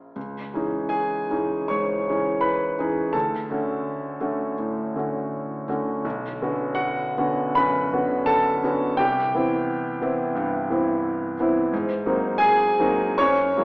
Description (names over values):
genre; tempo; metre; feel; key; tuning
classical, impressionist solo piano; 70-92 BPM; 4/4; rubato; C# minor; A4 = 441 Hz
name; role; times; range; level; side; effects
clear grand piano; solo; 0.0-13.6 s; Bb1 to C#6; -21 LUFS; equal; none
room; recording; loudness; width
wet recital hall reverb, RT60 1.6 s; heard from further back in the room, AM radio sound; -21 LUFS; side -28 dB against mid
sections
0.2-13.6 A section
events
none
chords
0.2 C#madd9; 3.1 Dmaj7; 6.0 Bmadd9; 9.0 Cmaj7; 11.7 Ab9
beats
| 0.16 0.91 1.71 2.44 | 3.14 3.85 4.57 5.32 | 6.05 6.77 7.57 8.29 | 9.00 9.67 10.35 11.04 | 11.72 12.39 13.18